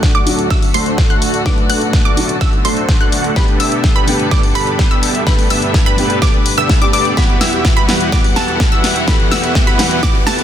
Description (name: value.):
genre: EDM, festival progressive house.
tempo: 126 BPM.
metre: 4/4.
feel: straight.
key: G major.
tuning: A4 = 440 Hz.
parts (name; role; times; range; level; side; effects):
dark baby grand piano; accompaniment; 0.0-10.4 s; D3 to F#5; -22 LUFS; equal; sidechain pumping, digital delay.
rich chamber string section; sustained chords; 0.0-10.4 s; D2 to F#5; -22 LUFS; left 1 dB; sidechain pumping.
wide unison pluck; arpeggios; 0.0-10.4 s; A5 to F#6; -20 LUFS; moving between left 4 dB and right 6 dB; auto-pan, sidechain pumping, digital delay.
dense compressed supersaw; riff; 0.0-10.4 s; A3 to F#5; -19 LUFS; equal; sidechain pumping, low-pass filter, digital delay.
big-room dance drum kit; drums; 0.0-10.4 s; hi-hat, snare drum; -20 LUFS; left 1 dB; small room ambience.
electronic kick drum; drums; 0.0-10.1 s; none; -14 LUFS; equal; small room ambience.
riser; sound effects; 9.2-10.4 s; none; -32 LUFS; right 1 dB; none.
room: light reverb, digital ambience.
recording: dense, heavily limited modern master.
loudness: -11 LUFS.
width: side -10 dB against mid.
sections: 0.0-10.4 A section.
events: build-up 0.0-10.4; drum fill 0.0-10.4; filter sweep on supersaw synth 0.0-10.4.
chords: 0.0 D; 3.4 Gadd9; 7.2 Emadd9.